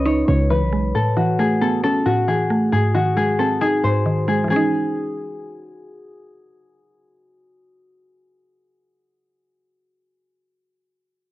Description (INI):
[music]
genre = hip hop, trap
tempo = 135 BPM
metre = 4/4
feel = half-time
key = C# minor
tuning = A4 = 440 Hz
[part]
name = concert harp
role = melody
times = 0.0-6.8 s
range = F#4 to D#5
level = -21 LUFS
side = left 2 dB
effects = low-pass filter, cassette tape, analog delay
[part]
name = mallet-like synth pluck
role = accompaniment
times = 0.0-8.8 s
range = G#2 to D#4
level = -20 LUFS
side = right 1 dB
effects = chorus, low-pass filter
[part]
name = hard-hitting 808-style bass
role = bass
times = 0.0-0.9 s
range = B1 to C#2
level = -20 LUFS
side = right 1 dB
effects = none
[sound]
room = moderate studio reverb, RT60 0.5 s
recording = home recording on cassette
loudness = -16 LUFS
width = side -16 dB against mid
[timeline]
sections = 0.0-4.5 A section; 4.5-8.1 B section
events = none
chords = 0.0 C#madd9; 0.9 Aadd9; 2.7 G#; 4.5 C#madd9